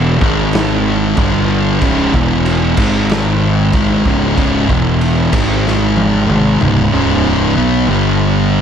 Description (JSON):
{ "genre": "stoner and doom metal", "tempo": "94 BPM", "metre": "4/4", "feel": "straight", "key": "C# minor", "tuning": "A4 = 440 Hz", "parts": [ { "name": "thick fuzz guitar", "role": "riff", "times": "0.0-8.6 s", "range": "C#2 to B3", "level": "-15 LUFS", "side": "left 8 dB", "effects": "distortion" }, { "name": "thick fuzz guitar", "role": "riff", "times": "0.0-8.6 s", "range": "C#2 to B3", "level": "-16 LUFS", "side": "right 8 dB", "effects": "distortion" }, { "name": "fuzz fingered electric bass", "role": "bass", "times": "0.0-8.6 s", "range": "C#1 to B1", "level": "-18 LUFS", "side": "equal", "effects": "overdrive" }, { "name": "raw garage drum kit", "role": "drums", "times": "0.2-6.9 s", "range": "crash cymbal, kick drum, snare drum, toms", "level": "-18 LUFS", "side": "equal", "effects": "none" } ], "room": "light reverb, small room ambience", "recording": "none", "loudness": "-11 LUFS", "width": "side -8 dB against mid", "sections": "0.0-6.9 A section; 6.9-8.6 B section", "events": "drum fill 5.7-6.9", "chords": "0.2 G#5; 1.2 G5; 1.8 C#5; 2.1 E5; 2.8 G#5; 3.7 C#5; 4.7 E5; 5.3 G#5; 6.3 C#5; 7.9 G5", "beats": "0.53 1.17 | 1.81 2.45 3.09 3.73 | 4.37 5.01 5.65 6.29 | 6.93 7.57 8.21" }